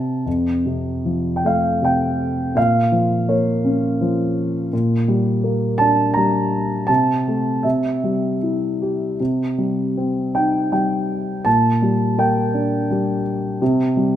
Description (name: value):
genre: classical, lyrical solo piano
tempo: 74-85 BPM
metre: 3/4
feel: rubato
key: F major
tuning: A4 = 436 Hz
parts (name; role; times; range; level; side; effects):
- dark concert grand piano; solo; 0.0-14.2 s; F2 to Bb5; -17 LUFS; equal; none
room: moderate recital hall reverb, RT60 1.6 s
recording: none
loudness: -17 LUFS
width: side -11 dB against mid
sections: 0.3-14.2 A section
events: grand piano fill 0.0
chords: 0.3 F; 2.6 Bbm; 4.7 Gm/Bb; 6.9 Am/C; 7.6 C; 9.2 Cm; 11.5 Gm/Bb; 13.6 C5